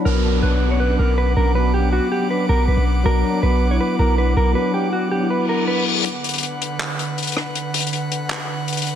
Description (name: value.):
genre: hip hop, trap.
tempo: 160 BPM.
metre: 4/4.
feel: half-time.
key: B harmonic minor.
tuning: A4 = 439 Hz.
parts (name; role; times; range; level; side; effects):
mellow tine electric piano; accompaniment; 0.0-6.1 s; F#3 to E4; -22 LUFS; left 3 dB; ensemble chorus.
airy breathy pad; sustained chords; 0.0-9.0 s; D3 to D6; -26 LUFS; right 1 dB; chorus.
mellow electric guitar; melody; 0.1-5.8 s; F#4 to C#5; -22 LUFS; right 2 dB; none.
warm 808-style bass; bass; 0.1-4.5 s; B1; -18 LUFS; equal; none.
downlifter and reverse cymbal; sound effects; 0.1-3.1, 5.5-6.1 s; none; -26 LUFS; left 3 dB; none.
compact cocktail drum kit; drums; 6.1-9.0 s; handclaps, hi-hat, rim click; -23 LUFS; left 3 dB; vintage 12-bit sampler grit.
room: light reverb, small room reverb.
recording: dense, heavily limited modern master.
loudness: -17 LUFS.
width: side -9 dB against mid.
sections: 0.1-6.1 A section; 6.1-9.0 B section.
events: reverse cymbal 5.5-6.1; break 6.1-9.0.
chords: 0.1 Bm.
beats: | 0.05 0.43 0.80 1.18 | 1.55 1.93 2.30 2.68 | 3.05 3.43 3.80 4.18 | 4.55 4.93 5.30 5.68 | 6.05 6.43 6.80 7.18 | 7.55 7.93 8.30 8.68.